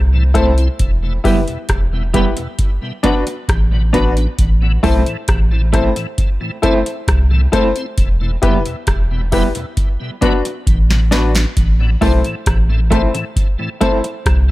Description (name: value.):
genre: roots reggae.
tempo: 67 BPM.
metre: 4/4.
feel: straight.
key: A dorian.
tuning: A4 = 440 Hz.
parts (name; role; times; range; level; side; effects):
soft dub sub bass; bass; 0.0-14.5 s; E1 to C2; -14 LUFS; equal; none.
tonewheel organ; accompaniment; 0.1-14.5 s; E2 to E4; -26 LUFS; left 1 dB; overdrive, chorus vibrato, slow rotary speaker, tape echo.
electric guitar at the edge of break-up; accompaniment; 0.3-14.1 s; G3 to F#4; -22 LUFS; right 4 dB; tremolo, tape echo.
clear grand piano; stabs; 0.3-14.0 s; D4 to C5; -20 LUFS; left 4 dB; none.
booming analog drum machine; drums; 0.4-14.5 s; hi-hat, kick drum, rim click, snare drum; -17 LUFS; equal; none.
room: digital ambience.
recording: none.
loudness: -13 LUFS.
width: side -18 dB against mid.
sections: 0.0-14.5 A section.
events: drum fill 10.7-11.6.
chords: 0.0 Am; 0.8 Em; 2.6 Bm; 4.4 Am; 8.0 Em; 9.8 Bm; 11.6 Am.